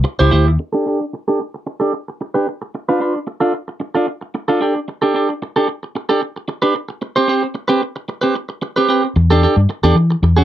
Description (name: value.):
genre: disco.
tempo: 112 BPM.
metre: 4/4.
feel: straight.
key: unclear.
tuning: A4 = 445 Hz.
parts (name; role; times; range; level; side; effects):
clean electric guitar; accompaniment; 0.0-10.4 s; C4 to C5; -16 LUFS; right 2 dB; harmonic tremolo, low-pass filter.
vintage muted fingered electric bass; bass; 0.0-0.6, 9.2-10.4 s; C#2 to E3; -12 LUFS; left 1 dB; none.
room: light reverb.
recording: dry, close 1970s-style studio recording.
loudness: -15 LUFS.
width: side -12 dB against mid.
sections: 0.6-9.2 A section; 9.2-10.4 B section.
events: filter sweep on clean electric guitar 0.6-9.2.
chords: 0.0 D9sus4; 0.6 Dsus4; 2.7 F6; 4.6 Dsus4; 7.0 Gadd11/C; 9.2 Em7.